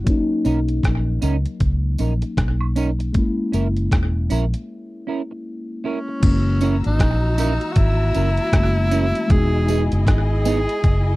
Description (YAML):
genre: lovers rock reggae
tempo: 78 BPM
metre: 4/4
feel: swing 61% on 16ths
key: unclear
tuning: A4 = 440 Hz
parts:
  - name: mellow tine electric piano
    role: accompaniment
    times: 0.0-11.2 s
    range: E3 to F#4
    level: -25 LUFS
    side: left 2 dB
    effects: phaser, slapback echo
  - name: vintage muted fingered electric bass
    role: bass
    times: 0.0-11.2 s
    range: E1 to C#2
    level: -20 LUFS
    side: equal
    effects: none
  - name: detuned 8-bit digital drum machine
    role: drums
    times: 0.1-11.1 s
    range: crash cymbal, hi-hat, kick drum, rim click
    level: -19 LUFS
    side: equal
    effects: none
  - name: semi-hollow electric guitar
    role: stabs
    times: 0.4-10.6 s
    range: B3 to A#4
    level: -23 LUFS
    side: right 5 dB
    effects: analog chorus
  - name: tambourine and woodblock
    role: percussion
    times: 0.4-10.7 s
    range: none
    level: -36 LUFS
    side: right 5 dB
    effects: none
  - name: bright tenor saxophone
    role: melody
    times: 5.9-11.2 s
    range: C#4 to G#4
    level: -25 LUFS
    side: equal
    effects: tape echo
  - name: dark studio string section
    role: second line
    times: 6.2-11.2 s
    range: E4 to E6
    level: -30 LUFS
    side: left 2 dB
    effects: none
room: little or no reverb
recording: dry, close 1970s-style studio recording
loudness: -17 LUFS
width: side -19 dB against mid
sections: 0.0-6.2 A section; 6.2-11.2 B section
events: break 4.7-6.2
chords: 0.1 Bmaj9; 3.1 F#7 (rootless); 6.2 F#7; 9.3 Emaj7